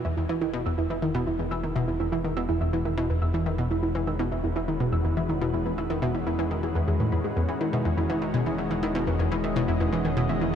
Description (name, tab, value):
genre	ambient, sequencer-driven space music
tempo	123 BPM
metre	4/4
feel	straight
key	E major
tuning	A4 = 440 Hz
part	lush unison pad	sustained chords	0.0-10.6 s	D#3 to D#5	-32 LUFS	left 1 dB	chorus
part	warbly dusty pluck	arpeggios	0.0-10.5 s	E4 to E6	-30 LUFS	moving between left 1 dB and right 6 dB	chorus, auto-pan, ping-pong delay
part	fat analog bass	bass	0.0-10.6 s	E1	-33 LUFS	equal	none
part	analog pluck	riff	0.1-10.5 s	E2 to E3	-27 LUFS	left 1 dB	chorus, ping-pong delay
room	moderate huge ambient reverb, RT60 7.6 s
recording	dark, warm production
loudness	-24 LUFS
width	side -8 dB against mid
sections	0.0-10.6 A section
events	fade-in on analog synth pad 0.0-10.6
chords	0.0 E